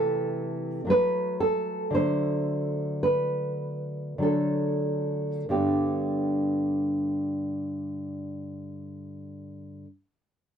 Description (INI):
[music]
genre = classical, baroque-style dance for nylon-string guitar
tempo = 45-60 BPM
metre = 4/4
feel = rubato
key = G major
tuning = A4 = 439 Hz
[part]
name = nylon-string guitar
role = solo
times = 0.0-9.9 s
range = G2 to C5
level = -26 LUFS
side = equal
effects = none
[sound]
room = little or no reverb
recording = close, detailed microphones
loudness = -25 LUFS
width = side -8 dB against mid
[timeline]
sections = 0.0-5.5 A section; 5.5-10.4 B section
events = slowing down 0.0-5.5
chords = 0.0 Am/C; 0.9 D7; 5.5 G